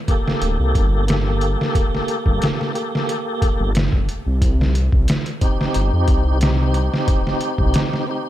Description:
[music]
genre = trip hop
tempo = 90 BPM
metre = 4/4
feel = straight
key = G minor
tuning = A4 = 438 Hz
[part]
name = tonewheel organ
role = accompaniment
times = 0.1-8.3 s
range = Bb3 to A4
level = -23 LUFS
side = equal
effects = chorus vibrato, fast rotary speaker, tremolo, tape echo
[part]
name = trip hop sampler-style drum kit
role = drums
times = 0.1-8.1 s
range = hi-hat, kick drum, snare drum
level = -20 LUFS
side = equal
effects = overdrive
[part]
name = dark detuned saw bass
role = bass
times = 0.4-7.7 s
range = D1 to F2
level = -18 LUFS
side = equal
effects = none
[sound]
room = little or no reverb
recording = dark, warm production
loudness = -16 LUFS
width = side -13 dB against mid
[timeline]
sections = 0.0-8.3 A section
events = none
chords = 0.0 Gmadd9; 4.4 Cm

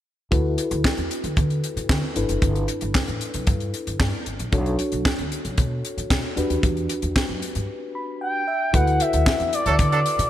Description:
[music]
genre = early-eighties boogie funk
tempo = 114 BPM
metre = 4/4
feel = straight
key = D major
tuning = A4 = 440 Hz
[part]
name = mellow FM electric piano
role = accompaniment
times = 0.3-10.3 s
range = D4 to B5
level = -28 LUFS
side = left 2 dB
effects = chorus, slapback echo
[part]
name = upright bass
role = bass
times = 0.3-10.3 s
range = F#1 to D3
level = -25 LUFS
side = equal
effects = none
[part]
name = tight funk drum kit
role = drums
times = 0.3-10.3 s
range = handclaps, hi-hat, kick drum, snare drum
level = -24 LUFS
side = equal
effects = none
[part]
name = expressive portamento lead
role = melody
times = 8.2-10.3 s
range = D5 to G5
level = -22 LUFS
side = equal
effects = chorus, slapback echo
[part]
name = clear horn section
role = second line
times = 9.7-10.0 s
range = F#3 to A4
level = -24 LUFS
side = right 4 dB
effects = slapback echo
[sound]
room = moderate lush hall reverb, RT60 2.7 s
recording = big arena sound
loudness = -20 LUFS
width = side -12 dB against mid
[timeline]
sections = 0.3-8.7 A section; 8.7-10.3 B section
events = break 7.7-8.7; FM electric piano fill 7.7-8.7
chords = 0.3 D6; 2.2 G6; 4.5 Bm9; 6.4 Em9; 8.7 D6

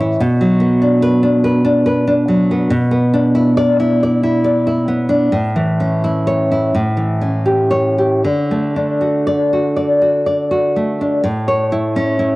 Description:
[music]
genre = romantic piece for solo classical guitar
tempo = 38-49 BPM (dotted quarters)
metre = 6/8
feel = rubato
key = D major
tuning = A4 = 437 Hz
[part]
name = nylon-string guitar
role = solo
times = 0.0-12.4 s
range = A2 to D5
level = -13 LUFS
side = equal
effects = cassette tape
[sound]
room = light reverb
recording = home recording on cassette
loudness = -13 LUFS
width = side -20 dB against mid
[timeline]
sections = 0.0-11.3 A section; 11.3-12.4 B section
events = none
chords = 0.2 Bm; 2.7 E5/B; 5.3 A; 6.8 A7; 8.3 D; 11.3 A

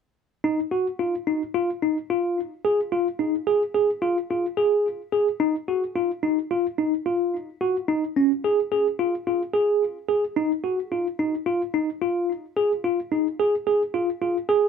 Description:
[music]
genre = progressive instrumental, progressive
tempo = 218 BPM (eighths)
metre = 9/8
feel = straight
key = unclear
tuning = A4 = 439 Hz
[part]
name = tine electric piano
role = solo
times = 0.4-14.7 s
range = Db4 to Ab4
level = -22 LUFS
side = equal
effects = medium stereo tremolo
[sound]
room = moderate small room reverb, RT60 0.5 s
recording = none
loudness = -22 LUFS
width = side -6 dB against mid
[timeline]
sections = 0.4-14.7 A section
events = none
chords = none

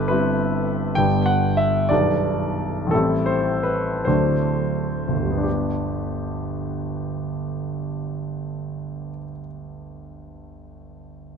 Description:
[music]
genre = classical, romantic character piece for solo piano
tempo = 40-68 BPM (dotted quarters)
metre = 6/8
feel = rubato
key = G major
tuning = A4 = 440 Hz
[part]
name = clear grand piano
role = solo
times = 0.0-11.4 s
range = B0 to G5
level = -21 LUFS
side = equal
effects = none
[sound]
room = moderate recital hall reverb, RT60 1.7 s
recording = close, detailed microphones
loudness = -20 LUFS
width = side -6 dB against mid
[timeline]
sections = 0.0-5.4 A section; 5.4-10.9 B section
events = slowing down 0.1-5.4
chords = 0.0 C/G; 1.0 G; 1.9 G/B; 2.9 Am7; 4.1 D7; 5.4 G

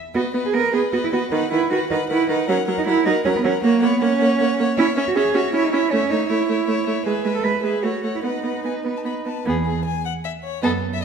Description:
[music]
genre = quick classical-period movement for string quartet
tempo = 156 BPM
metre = 3/4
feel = rubato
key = B major, E major from 4.8 s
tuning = A4 = 441 Hz
[part]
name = warm violin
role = melody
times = 0.1-11.0 s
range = G#4 to B5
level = -31 LUFS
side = left 9 dB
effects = none
[part]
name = rich viola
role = accompaniment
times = 0.1-10.8 s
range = D#3 to C#4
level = -23 LUFS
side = right 2 dB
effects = none
[part]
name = rich cello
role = bass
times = 0.1-10.9 s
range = E2 to B4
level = -21 LUFS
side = right 5 dB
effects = none
[part]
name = rich violin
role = second line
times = 0.2-10.8 s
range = G#4 to C#5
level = -26 LUFS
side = left 3 dB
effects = none
[sound]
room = moderate concert hall reverb, RT60 2.0 s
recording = none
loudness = -18 LUFS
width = side -6 dB against mid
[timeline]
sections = 0.1-9.5 A section; 9.5-11.0 B section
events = none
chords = 0.1 B; 1.3 B/D#; 2.5 F#; 3.6 F#/A#; 4.8 C#m; 5.9 A; 7.1 E/G#; 7.8 F#m/A; 8.2 B; 9.5 E

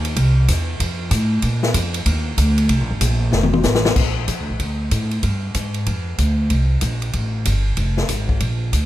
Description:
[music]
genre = jazz, big band swing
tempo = 189 BPM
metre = 4/4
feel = swing 63% on 8ths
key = Bb major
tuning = A4 = 440 Hz
[part]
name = upright bass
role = bass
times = 0.0-8.9 s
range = F1 to Bb2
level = -18 LUFS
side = equal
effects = none
[part]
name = swinging big-band drum kit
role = drums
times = 0.0-8.8 s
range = crash cymbal, hi-hat, kick drum, ride cymbal, snare drum, toms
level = -22 LUFS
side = left 2 dB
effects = none
[sound]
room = little or no reverb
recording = none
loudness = -17 LUFS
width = side -14 dB against mid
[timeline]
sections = 0.0-4.0 A section; 4.0-8.9 B section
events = drum fill 3.3-4.0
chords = none

